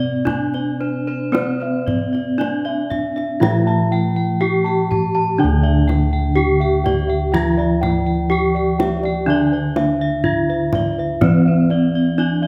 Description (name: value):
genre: Javanese gamelan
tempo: 55-62 BPM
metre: 4/4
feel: straight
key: D slendro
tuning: A4 = 440 Hz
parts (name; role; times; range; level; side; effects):
- gamelan-type bronze metallophone; melody; 0.0-12.5 s; C4-45c to G4-35c; -23 LUFS; equal; none
- gamelan-type bronze metallophone; accompaniment; 0.0-12.5 s; D3 to C4-45c; -25 LUFS; equal; none
- gamelan-type bossed gongs; arpeggios; 0.0-12.5 s; C5-45c to A5+25c; -30 LUFS; equal; none
- gamelan-type bronze metallophone; arpeggios; 0.0-12.5 s; C5-45c to A5+25c; -29 LUFS; equal; none
- gamelan-type bossed gongs; bass; 0.0-12.5 s; D2 to C5-45c; -23 LUFS; equal; none
- kendang; percussion; 0.3-12.3 s; none; -27 LUFS; equal; none
room: wet recital hall reverb, RT60 1.4 s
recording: none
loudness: -18 LUFS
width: mono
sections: 0.0-5.4 A section; 5.4-12.5 B section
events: none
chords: none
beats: 0.27 | 1.34 2.40 3.42 4.42 | 5.40 6.37 7.34 8.30 | 9.27 10.24 11.21 12.18